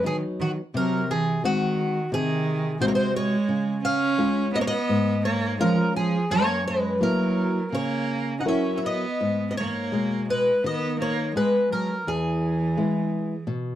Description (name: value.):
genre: fado-style ballad.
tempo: 85 BPM.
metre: 4/4.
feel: rubato.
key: unclear.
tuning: A4 = 439 Hz.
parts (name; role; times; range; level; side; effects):
fingerpicked twelve-string acoustic guitar; melody; 0.0-13.4 s; F#4 to F#5; -26 LUFS; left 1 dB; none.
clear cello; second line; 0.0-13.4 s; D#3 to D#4; -26 LUFS; right 4 dB; none.
nylon-string guitar; accompaniment; 0.0-13.8 s; E2 to A#4; -26 LUFS; left 2 dB; none.
room: light reverb.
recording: dry, close 1970s-style studio recording.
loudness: -22 LUFS.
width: side -12 dB against mid.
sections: 0.0-13.8 A section.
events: none.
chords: 0.0 B; 0.7 G#7/B#; 3.5 C#; 6.3 F#7; 9.2 G#madd9; 12.1 E.